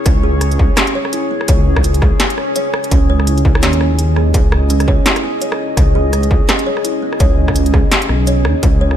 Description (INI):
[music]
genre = half-time drum and bass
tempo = 168 BPM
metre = 4/4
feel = swing 57% on 16ths, half-time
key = unclear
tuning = A4 = 439 Hz
[part]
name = deep dark ambient pad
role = sustained chords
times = 0.0-9.0 s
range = C#4 to D#5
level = -20 LUFS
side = equal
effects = chorus, built-in reverb, sidechain pumping
[part]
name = kalimba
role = arpeggios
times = 0.0-9.0 s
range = B3 to C#5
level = -23 LUFS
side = right 3 dB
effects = tape echo
[part]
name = dark detuned saw bass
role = bass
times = 0.1-9.0 s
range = B1 to D#2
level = -14 LUFS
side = equal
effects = none
[part]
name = electronic kick drum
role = drums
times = 0.1-8.7 s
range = none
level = -14 LUFS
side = equal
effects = distortion, studio reverb
[part]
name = industrial drum kit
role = drums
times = 0.1-9.0 s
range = hi-hat, rim click, snare drum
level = -18 LUFS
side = equal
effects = studio reverb
[part]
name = swell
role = sound effects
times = 2.3-2.9 s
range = none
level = -24 LUFS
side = left 4 dB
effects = none
[sound]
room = little or no reverb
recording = lossy compression artefacts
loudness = -11 LUFS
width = side -10 dB against mid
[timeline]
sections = 0.0-9.0 A section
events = swell 2.3-2.9; break 2.6-2.9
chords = 0.0 C#5